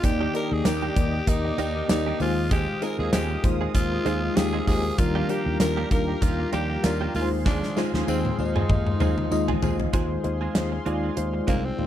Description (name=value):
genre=1980s-style pop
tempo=97 BPM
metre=4/4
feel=swing 55% on 16ths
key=unclear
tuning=A4 = 440 Hz
part: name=growling tenor saxophone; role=melody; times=0.0-11.9 s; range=Bb3 to Bb4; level=-30 LUFS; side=equal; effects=tape echo
part: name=FM electric piano with tremolo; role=accompaniment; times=0.0-11.9 s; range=Eb3 to Eb5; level=-28 LUFS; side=left 2 dB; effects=phaser
part: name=warm analog pad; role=sustained chords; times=0.0-11.9 s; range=Ab3 to Eb6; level=-37 LUFS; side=equal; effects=chorus, tremolo
part: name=direct-recorded clean electric guitar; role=riff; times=0.0-11.8 s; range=Eb3 to Ab4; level=-33 LUFS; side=right 8 dB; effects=ensemble chorus
part: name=sustaining fretless electric bass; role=bass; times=0.0-11.9 s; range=C2 to Eb2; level=-28 LUFS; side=equal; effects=none
part: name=gated 80s drum kit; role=drums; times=0.0-11.9 s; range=hi-hat, kick drum, snare drum, tambourine, toms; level=-25 LUFS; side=equal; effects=none
part: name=tambourine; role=percussion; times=0.0-9.8 s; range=none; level=-46 LUFS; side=left 13 dB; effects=none
room=little or no reverb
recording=none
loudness=-22 LUFS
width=side -11 dB against mid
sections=0.0-9.9 A section; 9.9-11.9 B section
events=drum fill 7.5-9.9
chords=0.0 Ebmaj7; 2.2 Fm7/Eb; 5.0 Gm7/Eb; 7.2 Ab6/Eb